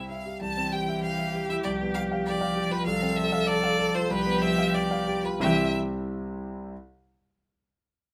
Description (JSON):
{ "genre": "quick classical-period movement for piano quartet", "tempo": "96 BPM", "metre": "2/4", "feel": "uneven beats", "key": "C major", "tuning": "A4 = 441 Hz", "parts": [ { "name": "bright violin", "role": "melody", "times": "0.0-5.8 s", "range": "B4 to A5", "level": "-32 LUFS", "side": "equal", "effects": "none" }, { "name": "rich cello", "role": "second line", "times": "0.0-5.8 s", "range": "E3 to F3", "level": "-33 LUFS", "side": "equal", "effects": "none" }, { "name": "clear viola", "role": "accompaniment", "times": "0.0-5.8 s", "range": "E4 to A4", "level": "-34 LUFS", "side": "equal", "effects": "none" }, { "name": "dark concert grand piano", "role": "accompaniment", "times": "0.0-6.7 s", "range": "C2 to A5", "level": "-32 LUFS", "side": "equal", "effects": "none" } ], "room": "light reverb", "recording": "close, detailed microphones", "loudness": "-27 LUFS", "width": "mono", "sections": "0.4-5.4 A section; 5.4-6.7 B section", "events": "none", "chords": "0.4 C; 1.6 G7/C; 2.9 F/C; 4.1 G7/C; 5.4 C" }